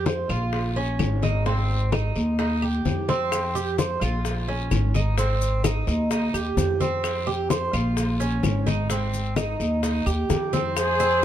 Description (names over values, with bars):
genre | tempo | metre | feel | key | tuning
latin, Cuban son and guajira | 129 BPM | 4/4 | straight | unclear | A4 = 440 Hz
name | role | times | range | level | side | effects
Cuban tres | arpeggios | 0.0-11.2 s | C4 to C5 | -27 LUFS | right 3 dB | none
upright bass | bass | 0.0-11.2 s | Ab1 to F2 | -25 LUFS | equal | none
bongos | percussion | 0.1-11.2 s | none | -33 LUFS | left 4 dB | none
congas | percussion | 0.1-11.2 s | none | -28 LUFS | left 4 dB | none
guiro | percussion | 0.1-11.2 s | none | -40 LUFS | left 4 dB | none
claves | percussion | 0.3-11.0 s | none | -34 LUFS | left 5 dB | none
maracas | percussion | 3.3-11.2 s | none | -38 LUFS | left 7 dB | none
warm trumpet | melody | 10.8-11.2 s | C5 | -20 LUFS | right 1 dB | none
warm chamber violin section | second line | 10.8-11.2 s | Ab4 | -26 LUFS | left 4 dB | none
room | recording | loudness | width
light reverb | dark, warm production | -21 LUFS | side -11 dB against mid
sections
0.0-10.8 A section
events
drum fill 3.1, 10.3-10.8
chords
0.0 F5; 0.5 Bbm; 1.5 Ab; 2.4 Eb; 3.3 Fsus2; 4.2 Bbm; 5.2 Ab; 6.1 Eb; 7.0 Fsus2; 8.0 Bbm; 8.9 Ab; 9.8 Eb